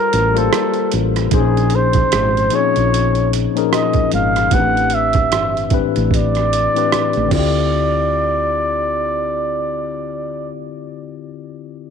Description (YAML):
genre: R&B, neo-soul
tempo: 75 BPM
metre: 4/4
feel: swing 60% on 16ths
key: D minor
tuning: A4 = 441 Hz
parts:
  - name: breathy flugelhorn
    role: melody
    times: 0.0-10.5 s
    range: Ab4 to F#5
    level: -18 LUFS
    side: right 2 dB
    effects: none
  - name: barky tine electric piano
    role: accompaniment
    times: 0.0-11.9 s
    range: A2 to A5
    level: -20 LUFS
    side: left 12 dB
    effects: none
  - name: woody fretless electric bass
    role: bass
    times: 0.1-10.5 s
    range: G1 to D2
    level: -20 LUFS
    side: right 2 dB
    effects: transformer saturation
  - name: boom bap sampler-style drum kit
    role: drums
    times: 0.1-7.5 s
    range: crash cymbal, hi-hat, kick drum, rim click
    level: -21 LUFS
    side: right 6 dB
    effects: none
room: light reverb, digital ambience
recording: 1960s-style stereo with parts hard left and right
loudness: -14 LUFS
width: side -7 dB against mid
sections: 0.0-7.7 A section; 7.7-10.9 B section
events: none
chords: 0.0 Gm11; 1.3 Bbm11; 4.5 Am11; 7.3 Dm11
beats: 0.51 | 1.31 2.11 2.91 3.71 | 4.51 5.31 6.11 6.91 | 7.71 8.51 9.31 10.11